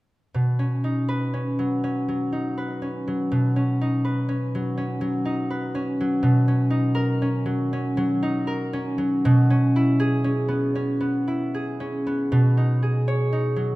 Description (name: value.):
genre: classical, solo harp piece.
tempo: 80 BPM.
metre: 4/4.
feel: rubato.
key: B major.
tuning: A4 = 440 Hz.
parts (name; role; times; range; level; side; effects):
concert harp; solo; 0.3-13.8 s; B2 to C#5; -21 LUFS; equal; none.
room: wet recital hall reverb, RT60 1.5 s.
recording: none.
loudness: -21 LUFS.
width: side -19 dB against mid.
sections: 0.3-12.3 A section; 12.3-13.8 B section.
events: none.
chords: 0.3 Badd9; 6.2 Bmaj9; 9.2 E69/B; 12.3 B69.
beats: | 0.35 1.10 1.84 2.57 | 3.31 4.03 4.76 5.48 | 6.22 6.96 7.72 8.47 | 9.23 9.99 10.74 11.52 | 12.32 13.07.